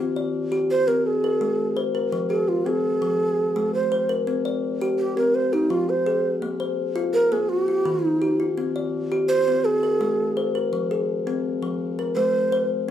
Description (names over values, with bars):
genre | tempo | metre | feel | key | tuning
southern african traditional, mbira-style interlocking cycle | 112 BPM (dotted quarters) | 12/8 | straight | F equiheptatonic | A4 = 441 Hz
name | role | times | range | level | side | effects
kalimba | arpeggios | 0.0-12.9 s | Eb3+29c to D5-43c | -24 LUFS | left 3 dB | none
mellow hollow low Native American-style wooden flute | melody | 0.7-12.7 s | Eb4+30c to C5 | -21 LUFS | right 2 dB | none
room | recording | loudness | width
moderate large studio reverb, RT60 0.9 s | band playing live in one room | -20 LUFS | side -10 dB against mid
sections
0.0-10.7 A section; 10.7-12.9 B section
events
none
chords
0.0 C5; 1.1 Ab; 2.1 Fm; 3.2 Ab; 4.3 C5; 5.3 Fm; 6.4 Bb5; 7.5 Eb; 8.6 C5; 9.7 Ab; 10.7 Fm; 11.8 Ab